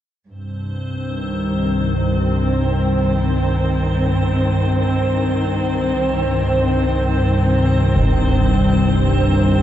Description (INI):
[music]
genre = dark ambient drone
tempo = free time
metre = none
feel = none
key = C minor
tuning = A4 = 441 Hz
[part]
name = dark chamber cello section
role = sustained chords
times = 0.3-9.6 s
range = G2 to C4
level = -20 LUFS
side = equal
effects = shimmer reverb
[part]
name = analog drone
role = drone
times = 0.5-9.6 s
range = C2 to G2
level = -18 LUFS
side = equal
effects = chorus
[part]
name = icy glass pad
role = texture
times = 0.6-9.6 s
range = C4 to C5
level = -25 LUFS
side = right 1 dB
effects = chorus, built-in reverb, shimmer reverb
[part]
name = concert bass drum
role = percussion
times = 8.0-8.2 s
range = none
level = -22 LUFS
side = equal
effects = low-pass filter on kick
[sound]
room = wet cathedral reverb, RT60 5.5 s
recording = worn, warbling old tape, cassette tape, warbly pitch drift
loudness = -15 LUFS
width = side -11 dB against mid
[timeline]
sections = 0.3-9.6 A section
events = none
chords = 0.3 Cm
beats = free time